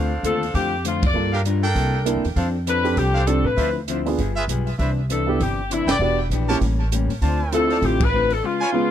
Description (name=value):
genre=jazz, big band swing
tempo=198 BPM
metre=4/4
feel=swing 60% on 8ths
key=D dorian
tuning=A4 = 440 Hz
part: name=vintage hollow-body jazz guitar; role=accompaniment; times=0.0-8.9 s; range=A2 to Bb4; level=-27 LUFS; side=left 6 dB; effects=none
part: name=bright trumpet section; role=stabs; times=0.0-8.7 s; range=D4 to A5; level=-28 LUFS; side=right 2 dB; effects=tape echo
part: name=upright bass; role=bass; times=0.0-8.4 s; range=E1 to A2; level=-23 LUFS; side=equal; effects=none
part: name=open jazz drum kit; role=drums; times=0.2-8.4 s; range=hi-hat, kick drum, ride cymbal, snare drum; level=-27 LUFS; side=equal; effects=none
part: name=bright saxophone section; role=melody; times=0.3-8.9 s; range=E4 to D5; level=-22 LUFS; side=left 3 dB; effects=none
part: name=warm upright piano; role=accompaniment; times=1.1-8.9 s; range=Bb3 to Bb4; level=-24 LUFS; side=right 5 dB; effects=none
room=little or no reverb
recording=dry, close 1970s-style studio recording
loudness=-18 LUFS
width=side -10 dB against mid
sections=0.0-8.9 A section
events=band accent 1.0, 5.9, 8.0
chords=0.0 Dm7; 1.1 Gm7; 1.8 C13; 2.4 F6; 3.6 Dm9; 4.2 G7b9; 4.8 Cmaj9; 6.0 Em7; 6.6 A7b9; 7.2 Dm7